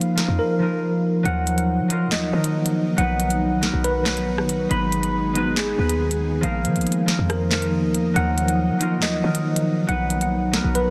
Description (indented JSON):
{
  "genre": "hip hop, drill",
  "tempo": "139 BPM",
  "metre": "4/4",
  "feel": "half-time",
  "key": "Eb minor",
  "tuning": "A4 = 439 Hz",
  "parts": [
    { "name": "concert harp", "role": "accompaniment", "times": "0.0-10.9 s", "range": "F3 to B4", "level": "-25 LUFS", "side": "equal", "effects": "low-pass filter" },
    { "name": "tine electric piano", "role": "arpeggios", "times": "0.0-10.9 s", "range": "Ab4 to Cb6", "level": "-29 LUFS", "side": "equal", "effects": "low-pass filter, digital delay" },
    { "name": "drill drum kit", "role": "drums", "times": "0.0-10.9 s", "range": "handclaps, hi-hat, rim click, snare drum", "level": "-29 LUFS", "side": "equal", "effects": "none" },
    { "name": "short 808-style bass", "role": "bass", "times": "0.3-10.9 s", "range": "Ab1 to Gb3", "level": "-28 LUFS", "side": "equal", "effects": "none" },
    { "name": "ethereal airy pad", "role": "sustained chords", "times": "1.8-10.9 s", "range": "Eb3 to Ab4", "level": "-32 LUFS", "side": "equal", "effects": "ensemble chorus, built-in reverb" }
  ],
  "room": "light reverb",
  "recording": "dense, heavily limited modern master",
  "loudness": "-21 LUFS",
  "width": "mono",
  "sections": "0.0-1.3 A section; 1.3-10.9 B section",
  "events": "silent gap 0.4-1.3",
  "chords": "0.0 Bbsus4; 1.3 Ebmadd9; 3.0 B; 4.7 Abm; 6.4 Bbsus4; 8.2 Ebmadd9; 9.9 B"
}